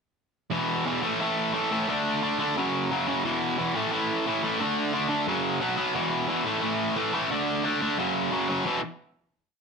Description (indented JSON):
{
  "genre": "punk",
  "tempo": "177 BPM",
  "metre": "4/4",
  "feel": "straight",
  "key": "unclear",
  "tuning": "A4 = 440 Hz",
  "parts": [
    { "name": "overdriven electric guitar", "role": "solo", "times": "0.5-8.8 s", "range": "E2 to D4", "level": "-24 LUFS", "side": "equal", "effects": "none" }
  ],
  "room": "moderate studio reverb, RT60 0.7 s",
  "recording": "none",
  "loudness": "-24 LUFS",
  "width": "side -5 dB against mid",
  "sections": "0.5-5.9 riff; 5.9-8.7 outro; 8.7-9.6 final chord",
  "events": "none",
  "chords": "0.5 E5; 1.0 A5; 1.9 D5; 2.6 F#5; 3.2 E5; 3.7 A5; 4.6 D5; 5.3 F#5; 5.6 B5; 5.9 E5; 6.5 A5; 7.3 D5; 8.0 F#5; 8.7 E5",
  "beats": "| 0.52 0.86 1.20 1.54 | 1.88 2.22 2.56 2.90 | 3.24 3.58 3.92 4.25 | 4.59 4.93 5.27 5.61 | 5.95 6.28 6.62 6.96 | 7.30 7.64 7.98 8.32 | 8.66"
}